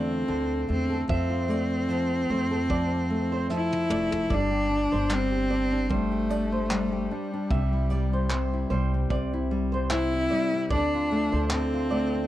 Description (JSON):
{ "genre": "acoustic pop", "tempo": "75 BPM", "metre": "4/4", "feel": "swing 55% on 16ths", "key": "unclear", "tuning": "A4 = 440 Hz", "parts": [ { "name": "rich cello", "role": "melody", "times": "0.0-12.3 s", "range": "G3 to E4", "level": "-27 LUFS", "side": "equal", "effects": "none" }, { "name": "flamenco guitar", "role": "accompaniment", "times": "0.0-12.3 s", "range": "C3 to C5", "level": "-29 LUFS", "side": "left 1 dB", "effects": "none" }, { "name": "flamenco guitar", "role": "arpeggios", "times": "0.0-12.3 s", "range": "C5 to E5", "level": "-36 LUFS", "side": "right 5 dB", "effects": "none" }, { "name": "upright bass", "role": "bass", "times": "0.0-12.3 s", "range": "F1 to F2", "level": "-30 LUFS", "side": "equal", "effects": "none" }, { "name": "vintage brush drum kit", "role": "drums", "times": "1.1-11.7 s", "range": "handclaps, kick drum, snare drum, toms", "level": "-30 LUFS", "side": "equal", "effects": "none" } ], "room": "small room ambience", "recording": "dry, close 1970s-style studio recording", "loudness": "-24 LUFS", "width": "side -14 dB against mid", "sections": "0.0-4.3 A section; 4.3-12.3 B section", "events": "drum fill 3.5-4.3", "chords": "0.0 Dm7; 1.1 F; 4.3 Gsus4; 7.5 C; 10.7 Dm7", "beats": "0.29 | 1.09 1.90 2.70 3.50 | 4.30 5.10 5.90 6.70 | 7.50 8.30 9.10 9.90 | 10.71 11.51" }